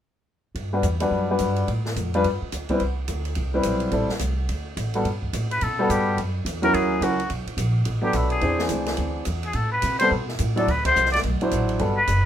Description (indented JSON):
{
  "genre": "jazz, small-group swing and bop",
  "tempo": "214 BPM",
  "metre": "4/4",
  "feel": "swing 62% on 8ths",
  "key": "G major",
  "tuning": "A4 = 440 Hz",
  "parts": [
    { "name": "upright bass", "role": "bass", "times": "0.5-12.3 s", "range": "F#1 to C3", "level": "-26 LUFS", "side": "right 1 dB", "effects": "none" },
    { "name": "open jazz drum kit", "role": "drums", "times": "0.6-12.2 s", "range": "hi-hat, kick drum, ride cymbal, snare drum", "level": "-32 LUFS", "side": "right 1 dB", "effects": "none" },
    { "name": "clear baby grand piano", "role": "accompaniment", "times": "0.7-12.0 s", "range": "E3 to D5", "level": "-23 LUFS", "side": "left 1 dB", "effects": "none" },
    { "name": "trumpet with straight mute", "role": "melody", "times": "5.5-12.3 s", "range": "E4 to D5", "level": "-22 LUFS", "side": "left 2 dB", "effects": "none" }
  ],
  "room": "light reverb",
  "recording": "minimal, uncompressed stereo recording",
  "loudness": "-21 LUFS",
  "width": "side -10 dB against mid",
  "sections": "0.6-5.0 A section; 5.0-12.3 B section",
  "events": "band accent 10.8",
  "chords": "0.6 Gmaj7; 1.7 Dm; 2.2 G; 2.8 Cmaj7; 3.9 Am7; 4.5 D; 5.0 Gmaj9; 6.2 F#7; 7.3 Bm7; 8.4 E7b13; 9.5 Amadd9; 10.7 D9",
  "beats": "| 0.56 0.84 1.12 1.40 | 1.68 1.96 2.24 2.52 | 2.80 3.08 3.37 3.65 | 3.93 4.21 4.49 4.77 | 5.05 5.33 5.61 5.89 | 6.17 6.45 6.74 7.02 | 7.30 7.58 7.86 8.14 | 8.42 8.70 8.98 9.27 | 9.55 9.83 10.11 10.39 | 10.67 10.95 11.23 11.52 | 11.80 12.08"
}